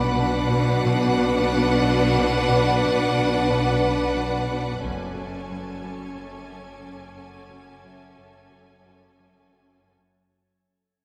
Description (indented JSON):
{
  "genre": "cinematic, suspense film score",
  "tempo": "90 BPM",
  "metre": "4/4",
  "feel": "straight",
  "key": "unclear",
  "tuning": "A4 = 439 Hz",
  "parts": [
    { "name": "rich studio violin section", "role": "melody", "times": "0.0-9.9 s", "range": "F#5 to G#5", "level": "-32 LUFS", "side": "equal", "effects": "none" },
    { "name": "warm studio violin section", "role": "second line", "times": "0.0-9.9 s", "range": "A4 to B4", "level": "-31 LUFS", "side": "equal", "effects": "none" },
    { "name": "rich studio viola section", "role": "accompaniment", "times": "0.0-9.9 s", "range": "C#4 to D4", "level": "-31 LUFS", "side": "equal", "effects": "none" },
    { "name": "soft additive organ-like pad", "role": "sustained chords", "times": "0.0-10.2 s", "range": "C#4 to G#5", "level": "-35 LUFS", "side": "equal", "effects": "ensemble chorus, built-in reverb" },
    { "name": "concert harp", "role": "riff", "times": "0.0-10.2 s", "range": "F#2 to B3", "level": "-30 LUFS", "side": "equal", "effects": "none" },
    { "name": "clear studio cello section", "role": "bass", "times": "0.0-9.9 s", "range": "F#2 to B2", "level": "-29 LUFS", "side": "equal", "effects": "none" },
    { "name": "clear studio double bass section", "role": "bass", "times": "0.0-9.9 s", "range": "F#1 to B1", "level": "-31 LUFS", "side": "equal", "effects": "none" },
    { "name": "vibraphone with medium mallets", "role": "texture", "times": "0.0-10.2 s", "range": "E5 to B5", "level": "-39 LUFS", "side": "equal", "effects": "none" },
    { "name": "solo taiko drums", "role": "drums", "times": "4.8-6.1 s", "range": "none", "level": "-45 LUFS", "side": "equal", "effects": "none" },
    { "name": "warm studio violin section", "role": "texture", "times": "4.9-9.8 s", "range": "C#6 to D6", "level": "-57 LUFS", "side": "equal", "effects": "none" }
  ],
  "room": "moderate concert hall reverb, RT60 2.2 s",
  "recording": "none",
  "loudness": "-21 LUFS",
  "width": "mono",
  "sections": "0.0-10.2 A section",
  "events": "fade-out 0.0-10.2",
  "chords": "0.0 Bm; 4.8 F#madd9"
}